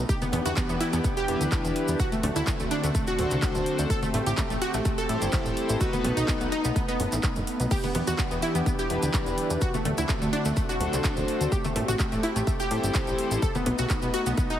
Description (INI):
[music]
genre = progressive house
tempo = 126 BPM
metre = 4/4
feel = straight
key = E minor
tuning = A4 = 440 Hz
[part]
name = airy breathy pad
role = sustained chords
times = 0.0-14.6 s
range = D3 to G4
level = -32 LUFS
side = equal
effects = chorus, sidechain pumping
[part]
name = plucky analog bass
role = bass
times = 0.0-14.3 s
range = D1 to A2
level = -29 LUFS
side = equal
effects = sidechain pumping
[part]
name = wide unison pluck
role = arpeggios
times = 0.1-14.6 s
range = A3 to A4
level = -30 LUFS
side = equal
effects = sidechain pumping, dub echo
[part]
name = big-room dance drum kit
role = drums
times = 0.1-14.6 s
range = crash cymbal, handclaps, hi-hat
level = -35 LUFS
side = equal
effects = sidechain pumping on hats, sidechain pumping on cymbals
[part]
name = electronic kick drum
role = drums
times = 0.1-14.5 s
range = none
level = -28 LUFS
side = equal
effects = none
[part]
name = cabasa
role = percussion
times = 0.1-14.6 s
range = none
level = -40 LUFS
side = right 2 dB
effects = none
[part]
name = congas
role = percussion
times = 0.2-13.9 s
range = none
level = -34 LUFS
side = equal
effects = sidechain pumping on perc
[part]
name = chorused polysynth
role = stabs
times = 1.3-13.4 s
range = D4 to C5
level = -32 LUFS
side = left 2 dB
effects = sidechain pumping, dub echo
[sound]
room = light reverb, digital ambience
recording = heavily compressed radio sound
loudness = -24 LUFS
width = side -11 dB against mid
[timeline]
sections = 0.0-14.6 A section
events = none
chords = 0.1 Em7; 2.0 D7; 3.9 Am7; 5.8 B7; 7.7 Em7; 9.6 D7; 11.5 Am7; 13.4 B7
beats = | 0.09 0.57 1.04 1.52 | 2.00 2.47 2.95 3.42 | 3.90 4.38 4.85 5.33 | 5.81 6.28 6.76 7.24 | 7.71 8.19 8.66 9.14 | 9.62 10.09 10.57 11.04 | 11.52 12.00 12.47 12.95 | 13.43 13.90 14.38